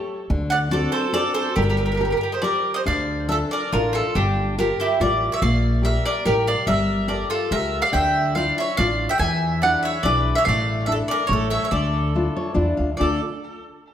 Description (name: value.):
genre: italian folk, Italian serenade.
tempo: 142 BPM.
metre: 3/4.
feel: straight.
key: D harmonic minor.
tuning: A4 = 440 Hz.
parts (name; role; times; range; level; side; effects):
nylon-string guitar; accompaniment; 0.0-13.2 s; D3 to F5; -26 LUFS; left 3 dB; none.
upright bass; bass; 0.3-13.2 s; G1 to E2; -24 LUFS; equal; none.
bowl-back mandolin; melody; 0.5-13.2 s; G4 to G#5; -22 LUFS; equal; none.
mandolin; second line; 0.5-13.2 s; D4 to E5; -27 LUFS; right 4 dB; tape echo.
room: wet recital hall reverb, RT60 1.4 s.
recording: none.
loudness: -19 LUFS.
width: side -10 dB against mid.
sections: 0.0-2.9 A section; 2.9-13.0 B section.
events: nylon-string guitar fill 12.1-13.0.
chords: 0.3 D7; 1.6 Gmadd9; 2.9 Dm; 4.1 Gm7; 5.4 Bb6; 6.7 Gmadd9; 7.9 Dmadd9; 9.2 E7; 10.5 Asus4; 11.3 A; 11.7 Dmadd9; 13.0 Dm.